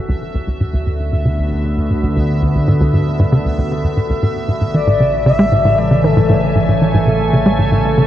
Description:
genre	ambient, sequencer-driven space music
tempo	116 BPM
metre	4/4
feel	straight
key	unclear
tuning	A4 = 442 Hz
part	evolving wavetable pad	sustained chords	0.0-8.1 s	C#3 to G#5	-20 LUFS	equal	chorus, built-in reverb
part	analog drone	bass	0.6-8.1 s	A1 to D2	-20 LUFS	equal	chorus
part	bubbling stepped-filter texture	texture	0.0-8.1 s	E5	-27 LUFS	right 2 dB	chorus, built-in reverb
part	tight sequencer bass	riff	0.1-8.0 s	D2 to G#3	-15 LUFS	equal	ping-pong delay
part	expressive portamento lead	melody	4.7-6.6 s	A4 to E5	-18 LUFS	left 3 dB	wide subtle chorus, ping-pong delay
room	moderate huge ambient reverb, RT60 7.7 s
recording	worn, warbling old tape, cassette tape, warbly pitch drift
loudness	-12 LUFS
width	side -12 dB against mid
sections	0.0-8.1 A section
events	fade-in on ambient pad 0.0-8.1; fade-in on synth texture 0.0-8.1; filter sweep on analog synth bass 0.0-8.1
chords	0.1 D6; 4.2 Amaj7

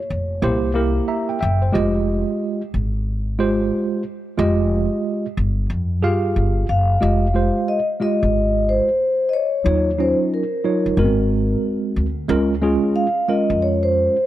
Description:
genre	hip hop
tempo	91 BPM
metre	4/4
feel	swing 64% on 16ths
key	F minor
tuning	A4 = 440 Hz
part	vibraphone with soft mallets	melody	0.0-0.4, 6.7-14.3 s	Bb4 to F5	-20 LUFS	left 1 dB	auto-pan
part	upright bass	bass	0.1-14.1 s	F1 to G2	-20 LUFS	equal	none
part	mellow tine electric piano	accompaniment	0.4-14.2 s	Gb3 to Bb5	-20 LUFS	right 2 dB	medium stereo tremolo
room	studio reverb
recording	none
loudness	-17 LUFS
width	side -14 dB against mid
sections	0.0-7.0 A section; 7.0-14.3 B section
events	tine electric piano fill 0.8-1.7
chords	0.4 C7; 1.7 Fm9; 9.7 Ebm9; 11.0 Ab9; 12.3 Db6

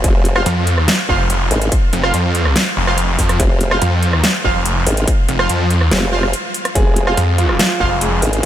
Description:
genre	heavy wobble dubstep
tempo	143 BPM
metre	4/4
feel	half-time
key	F minor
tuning	A4 = 443 Hz
part	formant-sweep wobble bass	bass	0.0-8.4 s	F1 to Ab1	-16 LUFS	equal	chorus, overdrive
part	dubstep drum kit	drums	0.0-8.5 s	hi-hat, rim click, snare drum	-19 LUFS	equal	none
part	electronic kick drum	drums	0.0-8.5 s	none	-16 LUFS	equal	distortion
part	orchestra-hit-like synth stab	stabs	0.4-8.0 s	F4 to F5	-22 LUFS	right 3 dB	built-in reverb, diffuse ambient delay
part	snarling distorted saw bass	bass	0.5-8.2 s	F1 to F2	-15 LUFS	equal	distortion, overdrive
part	bright concert grand piano	melody	6.8-8.5 s	F3 to Ab4	-21 LUFS	right 1 dB	diffuse ambient delay
room	light reverb, digital ambience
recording	none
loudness	-13 LUFS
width	side -11 dB against mid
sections	0.0-8.5 A section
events	break 6.3-6.8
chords	0.0 Fm

